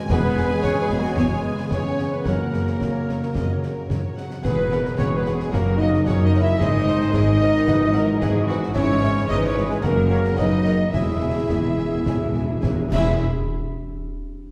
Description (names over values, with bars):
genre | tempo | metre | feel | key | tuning
cinematic, heroic adventure film score | 110 BPM | 4/4 | straight | E lydian | A4 = 440 Hz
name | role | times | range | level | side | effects
warm symphonic violin section | second line | 0.0-13.2 s | G#4 to B5 | -38 LUFS | equal | none
clear trombone section | sustained chords | 0.0-13.2 s | B2 to G#3 | -33 LUFS | equal | none
concert harp | arpeggios | 0.0-13.3 s | E2 to G#5 | -35 LUFS | equal | none
clear symphonic violin section | melody | 0.1-13.3 s | F#4 to E5 | -38 LUFS | equal | none
mellow hollow concert flute | second line | 0.1-13.2 s | F#4 to E5 | -34 LUFS | equal | none
rich symphonic viola section | accompaniment | 0.1-13.3 s | B3 to C#5 | -34 LUFS | equal | none
mellow French horn section | sustained chords | 0.1-13.2 s | F#3 to E4 | -27 LUFS | equal | none
dark trumpet section | stabs | 0.1-13.2 s | F#4 to E5 | -34 LUFS | equal | none
rich chamber cello section | bass | 0.1-13.2 s | E2 to G#2 | -28 LUFS | equal | none
rich symphonic double bass section | bass | 0.1-13.2 s | E1 to G#1 | -29 LUFS | equal | none
concert snare drum, clash cymbals and concert bass drum | drums | 0.1-13.2 s | none | -30 LUFS | equal | none
timpani | percussion | 0.1-0.9, 10.9-13.2 s | E2 | -30 LUFS | equal | none
room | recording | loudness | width
wet scoring stage reverb, RT60 1.7 s | heard from further back in the room | -21 LUFS | mono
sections
0.0-13.2 A section; 13.2-14.5 B section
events
slowing down 7.7-13.2; timpani fill 10.9-13.2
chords
0.1 E; 1.2 C#m/E; 2.3 F#; 4.4 Eadd9; 5.5 F#; 6.6 G#; 7.7 Eadd9/G#; 8.7 C#m/G#; 9.8 F#; 10.9 E; 13.2 N.C.